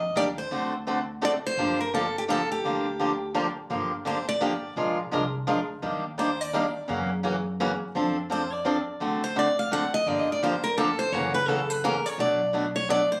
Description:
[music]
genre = acoustic string swing (jazz manouche)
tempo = 170 BPM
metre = 3/4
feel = swing 60% on 8ths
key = G minor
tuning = A4 = 440 Hz
[part]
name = picked steel-string acoustic guitar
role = melody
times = 0.0-13.2 s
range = G4 to F#5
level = -29 LUFS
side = equal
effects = none
[part]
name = upright bass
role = bass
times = 0.0-13.0 s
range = F#1 to F#2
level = -39 LUFS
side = equal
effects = none
[part]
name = picked swing-style acoustic guitar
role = accompaniment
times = 0.2-13.0 s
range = B2 to Bb4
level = -29 LUFS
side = equal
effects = none
[sound]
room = moderate studio reverb, RT60 0.6 s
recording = recorded on a phone in the room, club reverb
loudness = -27 LUFS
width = mono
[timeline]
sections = 0.0-3.7 A section; 3.7-12.2 B section; 12.2-13.2 B section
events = steel-string acoustic guitar solo 3.7-13.2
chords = 0.0 Ebmaj9; 0.5 D7; 1.6 Gm7; 4.8 Bb7; 5.8 Ebmaj7; 6.9 F#7; 7.9 F6; 9.0 D7; 10.1 Gm7; 11.1 F#7; 12.2 Bm7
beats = 0.16 | 0.52 0.87 1.23 | 1.58 1.93 2.29 | 2.64 3.00 3.35 | 3.70 4.06 4.41 | 4.76 5.12 5.47 | 5.83 6.18 6.53 | 6.89 7.24 7.59 | 7.95 8.30 8.65 | 9.01 9.36 9.71 | 10.06 10.42 10.77 | 11.12 11.48 11.83 | 12.19 12.54 12.89

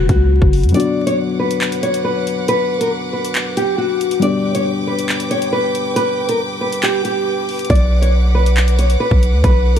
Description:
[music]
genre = hip hop, drill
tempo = 138 BPM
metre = 4/4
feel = half-time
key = B minor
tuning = A4 = 439 Hz
[part]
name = nylon-string guitar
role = melody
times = 0.0-9.8 s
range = F#4 to D5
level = -18 LUFS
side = equal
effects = low-pass filter, ping-pong delay
[part]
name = muted felt-like synth keys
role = accompaniment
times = 0.0-7.7 s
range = C#3 to G4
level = -22 LUFS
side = left 4 dB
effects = chorus, low-pass filter
[part]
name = long sustained 808-style bass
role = bass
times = 0.0-0.7, 7.7-9.8 s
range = F#1 to F#2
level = -13 LUFS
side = equal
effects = none
[part]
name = drill drum kit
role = drums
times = 0.1-9.8 s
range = handclaps, hi-hat, kick drum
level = -19 LUFS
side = equal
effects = none
[part]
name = rich chamber string section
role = sustained chords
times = 0.7-9.8 s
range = B4 to D6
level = -26 LUFS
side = left 1 dB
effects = none
[sound]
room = digital ambience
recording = dark, warm production, vinyl crackle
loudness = -14 LUFS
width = side -9 dB against mid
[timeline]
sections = 0.0-9.8 A section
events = break 0.7-7.7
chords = 0.0 F#sus4; 0.7 Bm; 4.2 G; 7.7 Bm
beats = 0.31 | 0.74 1.18 1.61 2.05 | 2.48 2.92 3.35 3.79 | 4.22 4.66 5.09 5.53 | 5.96 6.40 6.83 7.27 | 7.70 8.13 8.57 9.01 | 9.44

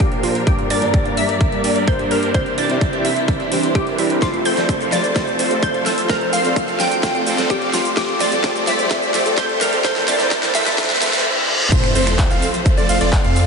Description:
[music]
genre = EDM, festival progressive house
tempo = 128 BPM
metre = 4/4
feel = straight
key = F major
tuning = A4 = 439 Hz
[part]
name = glassy wavetable pluck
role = melody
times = 0.0-10.7 s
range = E4 to G5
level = -21 LUFS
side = equal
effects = chorus, diffuse ambient delay
[part]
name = felt-muted upright piano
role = accompaniment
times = 0.0-11.7 s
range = G2 to E5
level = -26 LUFS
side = right 2 dB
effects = sidechain pumping, diffuse ambient delay
[part]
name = muted studio string section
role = sustained chords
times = 0.0-13.5 s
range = C3 to D5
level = -27 LUFS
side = left 2 dB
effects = sidechain pumping
[part]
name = supersaw chords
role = riff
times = 0.0-13.4 s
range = E3 to F5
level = -21 LUFS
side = right 1 dB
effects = phaser, sidechain pumping, low-pass filter, diffuse ambient delay
[part]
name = saturated sub bass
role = bass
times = 0.0-13.5 s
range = F1 to G2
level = -22 LUFS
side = equal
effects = sidechain pumping, high-pass filter
[part]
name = big-room dance drum kit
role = drums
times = 0.0-13.5 s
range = crash cymbal, finger snaps, handclaps, hi-hat, shaker, snare drum, toms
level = -24 LUFS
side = right 1 dB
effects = none
[part]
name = electronic kick drum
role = drums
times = 0.0-13.2 s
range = none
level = -18 LUFS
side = equal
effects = overdrive
[part]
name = riser, reverse cymbal and sub drop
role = sound effects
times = 4.0-13.5 s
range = none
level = -27 LUFS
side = equal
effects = none
[part]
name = bright concert grand piano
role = arpeggios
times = 11.7-13.4 s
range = C5 to F5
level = -23 LUFS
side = right 1 dB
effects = sidechain pumping, diffuse ambient delay
[sound]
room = wet huge ambient reverb, RT60 8.5 s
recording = dreamy mix soaked in reverb, high-pass filter, nothing above 10.7 kHz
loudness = -15 LUFS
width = side -5 dB against mid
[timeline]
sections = 0.0-11.7 A section; 11.7-13.5 B section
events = build-up 0.0-11.7; filter sweep on supersaw synth 0.0-11.7; filter sweep 0.0-11.7; drum fill 4.2-11.3, 11.4-11.7; reverse cymbal 10.8-11.7; drop 11.7-13.5; impact 11.7-13.5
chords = 0.5 Gm; 2.3 Cadd9; 4.2 F; 6.1 Bb; 8.0 G5; 9.8 Cadd9; 11.7 F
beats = 0.00 | 0.47 0.94 1.41 1.88 | 2.35 2.81 3.28 3.75 | 4.22 4.69 5.16 5.63 | 6.09 6.56 7.03 7.50 | 7.97 8.44 8.91 9.38 | 9.85 10.31 10.78 11.25 | 11.72 12.19 12.66 13.13

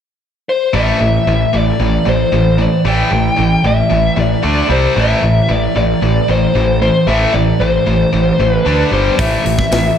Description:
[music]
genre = hard rock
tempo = 114 BPM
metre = 4/4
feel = straight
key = A minor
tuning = A4 = 441 Hz
[part]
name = smooth overdriven lead guitar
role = melody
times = 0.5-9.9 s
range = C5 to G5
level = -16 LUFS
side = left 2 dB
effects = slapback echo
[part]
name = sludgy distorted guitar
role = riff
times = 0.7-10.0 s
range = G2 to D4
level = -19 LUFS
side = right 9 dB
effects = overdrive, slapback echo
[part]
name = tight distorted guitar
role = riff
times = 0.7-10.0 s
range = G2 to D4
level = -17 LUFS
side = left 5 dB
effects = distortion
[part]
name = fuzz picked electric bass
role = bass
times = 0.7-9.9 s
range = G1 to D2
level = -16 LUFS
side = right 1 dB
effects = overdrive
[part]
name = tight metal drum kit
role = drums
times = 9.2-9.8 s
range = hi-hat, kick drum, snare drum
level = -17 LUFS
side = right 1 dB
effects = none
[sound]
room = moderate lush hall reverb, RT60 1.7 s, studio ambience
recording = big arena sound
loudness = -11 LUFS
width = side -8 dB against mid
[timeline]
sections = 0.7-10.0 A section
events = none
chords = 0.0 N.C.; 0.7 A5; 4.4 D5; 4.7 C5; 5.0 Am; 8.7 D5; 8.9 G5; 9.2 A5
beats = 0.21 | 0.74 1.27 1.79 2.32 | 2.85 3.38 3.91 4.43 | 4.96 5.49 6.02 6.55 | 7.08 7.61 8.13 8.66 | 9.19 9.72

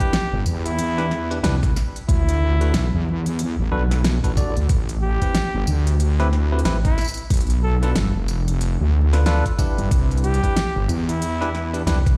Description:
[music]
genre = glitch hop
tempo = 92 BPM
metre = 4/4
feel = swing 60% on 16ths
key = unclear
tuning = A4 = 440 Hz
[part]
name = warm trumpet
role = melody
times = 0.0-11.7 s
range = E4 to A4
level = -30 LUFS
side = equal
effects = vintage 12-bit sampler grit, dub echo
[part]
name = bell-like tine electric piano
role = stabs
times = 0.0-12.0 s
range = C4 to D5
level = -31 LUFS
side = equal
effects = vintage 12-bit sampler grit, sidechain pumping, dub echo
[part]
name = electronic kick drum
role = drums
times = 0.0-12.2 s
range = none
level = -22 LUFS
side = equal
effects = none
[part]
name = pop drum kit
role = drums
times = 0.0-12.2 s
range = hi-hat, snare drum, tambourine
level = -29 LUFS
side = equal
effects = none
[part]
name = wobble bass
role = bass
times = 0.3-12.2 s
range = F1 to E2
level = -22 LUFS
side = equal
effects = chorus, tube saturation
[sound]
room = digital ambience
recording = played on a big sound system in a bare room, stone room reverb, vinyl crackle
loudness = -21 LUFS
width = mono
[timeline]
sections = 0.0-12.2 A section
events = none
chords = 0.0 Cmaj7; 2.1 Bm7; 4.7 Am7; 7.3 G7; 9.9 Cmaj7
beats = 0.13 0.78 1.43 | 2.09 2.74 3.39 4.04 | 4.70 5.35 6.00 6.65 | 7.30 7.96 8.61 9.26 | 9.91 10.56 11.22 11.87

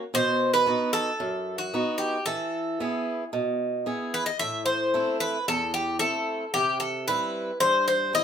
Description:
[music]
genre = greek folk, Greek bouzouki band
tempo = 112 BPM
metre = 4/4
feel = straight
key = A dorian sharp4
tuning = A4 = 440 Hz
[part]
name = picked swing-style acoustic guitar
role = accompaniment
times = 0.0-8.2 s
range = E2 to G#4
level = -29 LUFS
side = right 2 dB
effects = none
[part]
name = Greek bouzouki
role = melody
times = 0.1-8.2 s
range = F#4 to E5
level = -24 LUFS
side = left 1 dB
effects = none
[sound]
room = moderate studio reverb, RT60 0.6 s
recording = minimal, uncompressed stereo recording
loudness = -24 LUFS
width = side -8 dB against mid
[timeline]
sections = 0.0-8.2 A section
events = none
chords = 0.1 B; 2.3 E; 4.4 Am; 6.5 C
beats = | 0.13 0.67 1.20 1.73 | 2.27 2.80 3.34 3.87 | 4.40 4.94 5.47 6.01 | 6.54 7.07 7.61 8.14

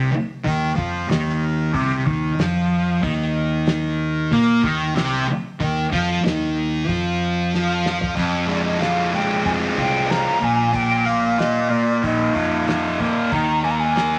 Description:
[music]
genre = psychedelic rock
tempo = 93 BPM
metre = 4/4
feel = straight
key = unclear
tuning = A4 = 440 Hz
[part]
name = thick fuzz guitar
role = riff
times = 0.0-14.2 s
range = F2 to Bb4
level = -22 LUFS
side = equal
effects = distortion, phaser
[part]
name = fuzz fingered electric bass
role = bass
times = 0.0-14.2 s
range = Bb1 to Bb2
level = -28 LUFS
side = equal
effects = overdrive
[part]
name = cloth-damped thuddy drum kit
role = drums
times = 0.5-14.1 s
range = hi-hat, kick drum, snare drum, toms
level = -28 LUFS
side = equal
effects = none
[part]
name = breathy mellow silver concert flute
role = melody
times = 8.5-14.2 s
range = D5 to Bb5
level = -24 LUFS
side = equal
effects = none
[sound]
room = moderate studio reverb, RT60 0.9 s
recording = none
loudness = -20 LUFS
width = mono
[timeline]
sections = 0.0-8.2 A section; 8.2-14.2 B section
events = drum fill 7.5-8.2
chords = 0.0 Ebsus2; 8.2 Fm; 10.4 Bbsus4; 13.3 Eb5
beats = | 0.47 1.11 1.75 2.39 | 3.04 3.68 4.32 4.96 | 5.60 6.25 6.89 7.53 | 8.17 8.81 9.46 10.10 | 10.74 11.39 12.03 12.67 | 13.32 13.96

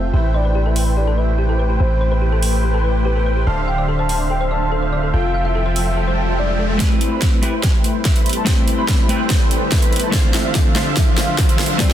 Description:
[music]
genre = future bass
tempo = 144 BPM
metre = 4/4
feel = half-time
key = A minor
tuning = A4 = 440 Hz
[part]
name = clean electric guitar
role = accompaniment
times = 0.0-0.1, 6.8-11.9 s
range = A3 to E5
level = -24 LUFS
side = left 3 dB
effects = sidechain pumping, ping-pong delay
[part]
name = shimmering ambient pad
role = sustained chords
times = 0.0-11.9 s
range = C3 to E5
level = -30 LUFS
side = equal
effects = chorus, built-in reverb, sidechain pumping
[part]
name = big bright polysynth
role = riff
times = 0.0-11.9 s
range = D3 to B5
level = -22 LUFS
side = equal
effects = lush chorus, sidechain pumping
[part]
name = long sustained 808-style bass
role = bass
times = 0.0-6.8 s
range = D1 to A1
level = -18 LUFS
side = equal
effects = sidechain pumping
[part]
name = soft octave-layered synth lead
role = melody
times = 0.1-11.9 s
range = B4 to A5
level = -27 LUFS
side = left 1 dB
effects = chorus, tremolo, sidechain pumping, tape echo
[part]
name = thumb-piano-like synth pluck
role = arpeggios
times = 0.1-6.7 s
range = G4 to A5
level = -29 LUFS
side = left 3 dB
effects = chorus, sidechain pumping, ping-pong delay
[part]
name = big-room dance drum kit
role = drums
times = 0.8-11.9 s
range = hi-hat, snare drum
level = -22 LUFS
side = right 1 dB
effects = high-pass filter on cymbals, high-pass filter on hats, high-pass filter on snare, high-pass filter on room
[part]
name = riser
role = sound effects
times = 4.8-11.9 s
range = none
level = -28 LUFS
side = equal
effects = none
[part]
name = electronic kick drum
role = drums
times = 6.8-11.9 s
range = none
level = -16 LUFS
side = equal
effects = none
[sound]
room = light reverb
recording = dense, heavily limited modern master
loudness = -15 LUFS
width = side -11 dB against mid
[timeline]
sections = 0.0-6.8 A section; 6.8-11.9 B section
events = filter sweep on analog polysynth 0.0-6.8, 6.8-11.9; filter sweep on ambient pad 0.0-6.8; riser 4.8-6.8, 6.8-11.9; build-up 6.8-11.9; drum fill 6.8-11.9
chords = 0.1 Am9; 3.5 Dm7; 5.1 Fmaj7; 6.8 Am9; 10.1 Dm7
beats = | 0.14 0.55 0.97 1.39 | 1.80 2.22 2.63 3.05 | 3.47 3.88 4.30 4.72 | 5.13 5.55 5.97 6.38 | 6.80 7.22 7.63 8.05 | 8.47 8.88 9.30 9.72 | 10.13 10.55 10.97 11.38 | 11.80

